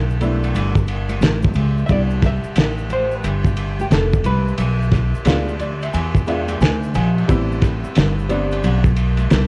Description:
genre	hip hop, jazz-hop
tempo	89 BPM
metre	4/4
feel	swing 65% on 16ths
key	C major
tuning	A4 = 439 Hz
part	upright bass	bass	0.0-9.5 s	F1 to E2	-22 LUFS	equal	none
part	tube shaker and congas	percussion	0.1-9.5 s	none	-37 LUFS	equal	none
part	warm upright piano	accompaniment	0.2-9.5 s	G3 to G#5	-27 LUFS	equal	cassette tape
part	cloth-damped thuddy drum kit	drums	0.2-9.5 s	hi-hat, kick drum, ride cymbal, snare drum	-22 LUFS	equal	cassette tape
part	vintage hollow-body jazz guitar	melody	1.9-5.6 s	G4 to E5	-26 LUFS	equal	none
room	little or no reverb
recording	home recording on cassette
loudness	-18 LUFS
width	mono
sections	0.0-9.5 A section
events	upright piano fill 5.3-7.3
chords	0.0 Gadd9; 1.9 Cmaj7; 4.6 E7b9/B; 7.3 Am9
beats	0.54 1.22 | 1.89 2.57 3.24 3.92 | 4.59 5.26 5.94 6.61 | 7.29 7.96 8.63 9.31

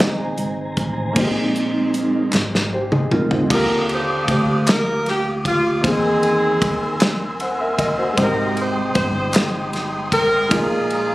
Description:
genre	slow gospel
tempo	51 BPM (dotted quarters)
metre	6/8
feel	straight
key	Eb major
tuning	A4 = 437 Hz
part	warm grand piano	accompaniment	0.0-11.1 s	Bb2 to Bb5	-24 LUFS	left 1 dB	none
part	mellow tonewheel organ	sustained chords	0.0-11.1 s	Eb3 to E6	-24 LUFS	right 1 dB	fast rotary speaker
part	upright bass	bass	0.0-11.1 s	G1 to E2	-26 LUFS	equal	none
part	modern studio drum kit	drums	0.0-11.1 s	crash cymbal, hi-hat, kick drum, ride cymbal, snare drum, toms	-22 LUFS	equal	none
part	group handclap	percussion	2.3-9.7 s	none	-24 LUFS	equal	none
part	warm saxophone section	melody	3.5-11.1 s	C4 to C5	-20 LUFS	equal	none
room	light reverb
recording	recorded on a phone in the room, club reverb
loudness	-17 LUFS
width	side -17 dB against mid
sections	0.0-1.2 A section; 1.2-3.5 B section; 3.5-11.1 C section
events	grand piano solo 0.0-1.2; tonewheel organ solo 1.2-3.5; drum fill 2.3-3.5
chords	0.0 Bb9sus4; 3.5 Ebmaj9; 5.8 C7alt; 8.2 Abmaj7; 10.5 Bb7sus4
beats	0.00 | 1.16 2.33 | 3.50 4.67 | 5.84 7.01 | 8.18 9.35 | 10.52

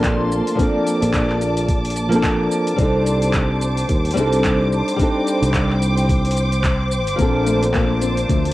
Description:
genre	sunset chillout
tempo	109 BPM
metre	4/4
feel	swing 57% on 16ths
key	C dorian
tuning	A4 = 439 Hz
part	nylon-string guitar	accompaniment	0.0-8.5 s	F3 to A4	-20 LUFS	equal	auto-pan, low-pass filter, cassette tape, tape echo
part	dark studio string section	sustained chords	0.0-8.5 s	Bb3 to D6	-24 LUFS	equal	cassette tape
part	sustaining fretless electric bass	bass	0.0-8.5 s	G1 to Eb2	-20 LUFS	equal	none
part	deep house drum kit	drums	0.0-8.5 s	handclaps, hi-hat, shaker	-28 LUFS	equal	overdrive, small room ambience, cassette tape
part	electronic kick drum	drums	0.0-8.4 s	none	-21 LUFS	equal	small room ambience, cassette tape
part	soft round pluck	arpeggios	7.2-8.4 s	A3 to C4	-24 LUFS	left 6 dB	analog chorus, cassette tape, tape echo
room	moderate studio reverb, RT60 0.5 s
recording	home recording on cassette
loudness	-16 LUFS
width	side -16 dB against mid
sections	0.0-8.5 A section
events	none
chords	0.0 Bbmaj9; 2.8 Cm69; 7.2 Bbmaj9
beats	0.04 | 0.59 1.14 1.69 2.24 | 2.79 3.34 3.89 4.44 | 4.99 5.54 6.09 6.65 | 7.20 7.75 8.30

